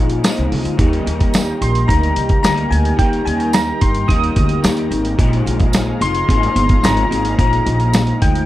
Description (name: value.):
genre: indie pop, bedroom pop.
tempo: 109 BPM.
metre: 4/4.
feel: straight.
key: Eb major.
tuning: A4 = 445 Hz.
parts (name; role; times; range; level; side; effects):
electric guitar through a small old amp; accompaniment; 0.0-8.5 s; Bb2 to Eb4; -21 LUFS; left 2 dB; analog chorus, warbly pitch drift.
lush unison pad; sustained chords; 0.0-8.5 s; Eb4 to Bb5; -28 LUFS; right 1 dB; chorus.
upright bass; bass; 0.0-8.4 s; F1 to G2; -18 LUFS; equal; none.
dusty soul sampler-style drum kit; drums; 0.1-8.5 s; hi-hat, kick drum, snare drum; -17 LUFS; equal; none.
tambourine; percussion; 0.2-8.1 s; none; -29 LUFS; right 5 dB; none.
soft electric-piano-like synth keys; melody; 1.6-8.5 s; G5 to Eb6; -20 LUFS; left 1 dB; analog chorus, slapback echo.
room: light reverb.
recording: dark, warm production.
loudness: -13 LUFS.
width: side -15 dB against mid.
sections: 0.0-8.5 A section.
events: none.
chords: 0.0 Bb7sus4; 0.8 Eb; 5.2 Bb7sus4.